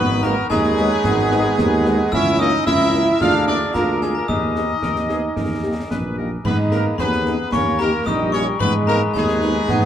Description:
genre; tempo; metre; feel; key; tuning
military-style march for wind band; 111 BPM; 2/4; straight; G# minor; A4 = 442 Hz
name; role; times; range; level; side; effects
dark trumpet section; melody; 0.0-9.9 s; G#4 to E#5; -24 LUFS; left 3 dB; none
clear euphonium; second line; 0.0-9.9 s; G#3 to E#4; -24 LUFS; right 4 dB; none
clear woodwind section; second line; 0.0-9.9 s; D#4 to B4; -30 LUFS; left 2 dB; none
glockenspiel with brass mallets; second line; 0.0-9.9 s; G#5 to E#6; -27 LUFS; left 4 dB; none
dark trombone section; sustained chords; 0.0-9.9 s; G3 to E#4; -24 LUFS; right 1 dB; none
dark tuba; bass; 0.0-9.9 s; G#1 to G#2; -22 LUFS; right 2 dB; none
dark French horn section; accompaniment; 0.2-9.5 s; G#3 to G#4; -27 LUFS; left 3 dB; none
concert snare drum, concert bass drum and clash cymbals; drums; 0.2-9.9 s; none; -26 LUFS; equal; none
room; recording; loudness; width
moderate spring reverb, RT60 2.8 s; heard from further back in the room; -16 LUFS; side -10 dB against mid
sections
0.0-9.9 A section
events
none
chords
0.0 G#m; 2.1 A#dim/C#; 3.2 A#7/D; 4.3 G#m/D#; 5.4 D#; 6.5 G#m; 7.5 D#; 8.6 G#m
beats
0.50 | 1.04 1.58 | 2.12 2.66 | 3.21 3.75 | 4.29 4.83 | 5.37 5.91 | 6.45 6.99 | 7.53 8.07 | 8.62 9.16 | 9.70

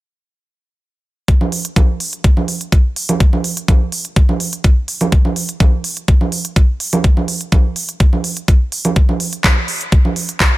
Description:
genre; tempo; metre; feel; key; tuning
house; 125 BPM; 4/4; straight; none; none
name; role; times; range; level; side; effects
electronic kick drum; drums; 1.3-10.5 s; none; -11 LUFS; equal; none
pop drum kit; drums; 1.3-10.5 s; handclaps, hi-hat; -20 LUFS; right 1 dB; sidechain pumping on hats
congas; percussion; 1.4-10.1 s; none; -20 LUFS; right 4 dB; sidechain pumping on perc
room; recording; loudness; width
little or no reverb; none; -13 LUFS; side -18 dB against mid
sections
1.3-10.6 A section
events
none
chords
none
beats
| 1.28 1.76 2.24 2.72 | 3.20 3.68 4.16 4.64 | 5.12 5.60 6.08 6.56 | 7.04 7.52 8.00 8.48 | 8.96 9.44 9.92 10.40

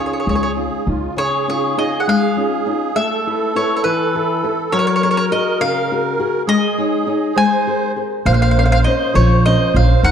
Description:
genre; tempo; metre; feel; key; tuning
italian folk, Italian serenade; 68 BPM (dotted quarters); 6/8; straight; Db major; A4 = 440 Hz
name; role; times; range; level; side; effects
mandolin; melody; 0.0-10.1 s; B4 to Ab5; -20 LUFS; left 1 dB; none
musette accordion; second line; 0.0-10.1 s; F4 to C5; -21 LUFS; right 6 dB; none
flamenco guitar; accompaniment; 0.0-10.1 s; Db3 to Db5; -19 LUFS; left 4 dB; none
upright bass; bass; 0.3-1.1, 8.3-10.1 s; Bb1 to Eb2; -14 LUFS; right 1 dB; none
room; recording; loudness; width
moderate scoring stage reverb, RT60 1.7 s; dark, warm production; -14 LUFS; side -8 dB against mid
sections
0.0-1.2 A section; 1.2-10.1 A section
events
none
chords
0.0 Dbadd9; 3.0 Asus2; 4.7 Gbadd9; 6.5 Absus4; 7.4 Abadd9; 8.3 Bbmadd9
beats
0.27 | 1.17 2.07 | 2.96 3.84 | 4.71 5.59 | 6.47 7.36 | 8.26 9.15 | 10.03

